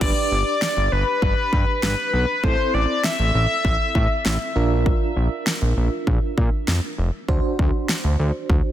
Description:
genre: synth-pop.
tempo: 99 BPM.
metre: 4/4.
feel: straight.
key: unclear.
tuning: A4 = 440 Hz.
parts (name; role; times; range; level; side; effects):
octave-doubled lead; melody; 0.0-4.6 s; B4 to E5; -23 LUFS; left 2 dB; chorus, ping-pong delay.
FM electric piano with tremolo; accompaniment; 0.0-8.7 s; C4 to C5; -28 LUFS; right 4 dB; none.
fat analog bass; bass; 0.0-8.6 s; F1 to Bb2; -21 LUFS; equal; none.
pop drum kit; drums; 0.0-8.6 s; crash cymbal, kick drum, snare drum; -23 LUFS; equal; none.
room: light reverb.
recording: dense, heavily limited modern master.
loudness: -18 LUFS.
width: side -12 dB against mid.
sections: 0.0-8.7 A section.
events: none.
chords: 0.0 G; 2.4 Am; 4.6 Bb; 7.3 D7.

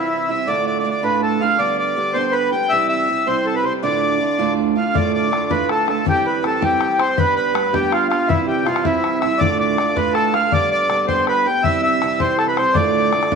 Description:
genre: celtic folk, Celtic jig.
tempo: 108 BPM (dotted quarters).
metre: 6/8.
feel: straight.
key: D dorian.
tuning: A4 = 439 Hz.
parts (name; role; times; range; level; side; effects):
accordion; melody; 0.0-13.4 s; E4 to G5; -18 LUFS; equal; none.
picked old ladder-braced acoustic guitar; accompaniment; 0.0-13.4 s; D2 to G4; -21 LUFS; right 7 dB; none.
bodhran; percussion; 5.0-13.4 s; none; -24 LUFS; left 8 dB; none.
room: wet echo chamber reverb, RT60 1.4 s, small room ambience.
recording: 1960s-style stereo with parts hard left and right.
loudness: -16 LUFS.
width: side -5 dB against mid.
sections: 0.0-4.9 A section; 4.9-13.4 A section.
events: none.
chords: 0.5 Dm; 1.6 G/D; 2.7 C; 3.8 Dm; 6.1 C/E; 7.2 G; 8.3 C; 9.4 Dm; 10.5 G/D; 11.6 C; 12.7 Dm.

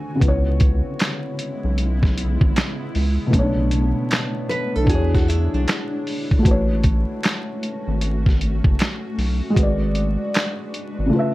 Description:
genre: lo-fi hip hop.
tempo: 77 BPM.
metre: 4/4.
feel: swing 65% on 16ths.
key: unclear.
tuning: A4 = 441 Hz.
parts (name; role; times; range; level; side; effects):
felt-muted upright piano; accompaniment; 0.0-11.3 s; B2 to G#5; -24 LUFS; left 1 dB; none.
granular cloud pad; sustained chords; 0.0-11.3 s; C#3 to G#5; -30 LUFS; equal; built-in reverb.
round analog bass; bass; 0.2-11.1 s; F#1 to E2; -21 LUFS; equal; none.
lo-fi sampler-style drum kit; drums; 0.2-11.0 s; handclaps, hi-hat, kick drum, snare drum; -20 LUFS; equal; none.
finger snaps; percussion; 1.0-10.6 s; none; -34 LUFS; right 4 dB; none.
nylon-string guitar; second line; 4.5-6.4 s; D4 to B4; -28 LUFS; equal; tape echo.
room: light reverb.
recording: vinyl crackle.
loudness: -18 LUFS.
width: side -18 dB against mid.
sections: 0.0-11.3 A section.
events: drums muted 11.1.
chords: 0.2 C#m7; 3.3 Bm9; 4.9 E13; 6.4 A69; 9.6 G#m7b5.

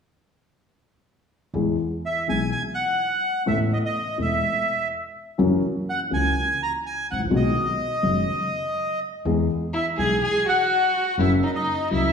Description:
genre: tango.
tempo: 125 BPM.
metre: 4/4.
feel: rubato.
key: E major.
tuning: A4 = 440 Hz.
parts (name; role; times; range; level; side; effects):
dark baby grand piano; accompaniment; 1.5-12.1 s; E1 to A4; -24 LUFS; left 2 dB; none.
upright bass; bass; 1.5-12.1 s; E1 to E2; -29 LUFS; right 2 dB; none.
bandoneon; melody; 2.1-12.1 s; D#5 to A#5; -24 LUFS; right 1 dB; none.
warm violin; second line; 9.7-12.1 s; D#4 to G#4; -24 LUFS; left 2 dB; none.
room: wet recital hall reverb, RT60 1.6 s.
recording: recorded in a church or concert hall, small room ambience.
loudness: -21 LUFS.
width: side -6 dB against mid.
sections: 1.5-12.1 A section.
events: none.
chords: 1.5 E; 3.5 Asus2; 5.4 F#7; 7.3 B6; 9.3 E; 11.2 F#.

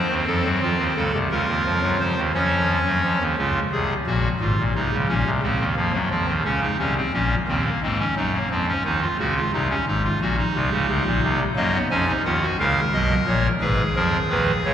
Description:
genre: classical, baroque-style 3-part fugue for pipe organ.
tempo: 58 BPM (dotted quarters).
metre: 12/8.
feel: straight.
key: Eb minor.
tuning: A4 = 440 Hz.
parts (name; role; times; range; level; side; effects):
pipe organ, clarinet reed; solo; 0.0-14.7 s; Ab1 to Ab5; -19 LUFS; equal; none.
room: wet cathedral reverb, RT60 6.8 s.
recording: recorded in a church or concert hall.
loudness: -19 LUFS.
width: side -9 dB against mid.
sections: 0.0-3.4 A section; 3.4-14.7 B section.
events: none.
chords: 0.0 F7; 1.3 Bbm/Db; 3.4 Db; 5.4 Bbm/Db; 7.5 Ebm; 9.5 Cm; 11.6 Ebm; 13.6 Fdim/Ab.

